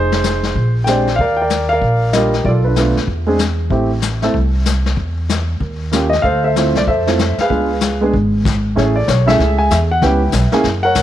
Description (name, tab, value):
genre	jazz piano trio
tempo	190 BPM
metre	4/4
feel	swing 62% on 8ths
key	unclear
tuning	A4 = 439 Hz
part	warm grand piano	melody	0.0-11.0 s	G3 to G#5	-16 LUFS	right 1 dB	none
part	upright bass	bass	0.0-11.0 s	F1 to F2	-17 LUFS	equal	none
part	vintage brush drum kit	drums	0.1-11.0 s	brushed snare drum, crash cymbal, hi-hat, kick drum, snare drum	-21 LUFS	left 5 dB	none
room	light reverb, small room ambience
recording	1960s-style stereo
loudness	-13 LUFS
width	side -12 dB against mid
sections	0.0-8.8 A section; 8.8-11.0 B section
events	none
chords	0.0 Fm7; 0.6 Bb13; 1.2 Ebmaj9; 2.4 Bm7b5; 3.1 E; 3.7 Am; 5.0 N.C.; 5.6 Eb9; 6.2 Dm9; 7.5 C#7b9; 8.8 Amaj9; 10.0 C#m7b5